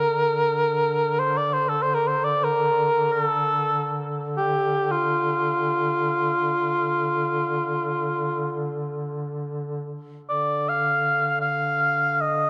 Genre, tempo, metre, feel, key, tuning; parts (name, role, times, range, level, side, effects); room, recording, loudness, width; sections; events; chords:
caucasian folk, Caucasian lament; free time; D minor; A4 = 438 Hz
warm cor anglais; melody; 0.0-12.5 s; F4 to F5; -24 LUFS; equal
warm duduk; drone; 0.0-12.5 s; D3; -31 LUFS; equal
wet church reverb, RT60 3.5 s; dark, warm production; -24 LUFS; mono
0.0-12.5 A section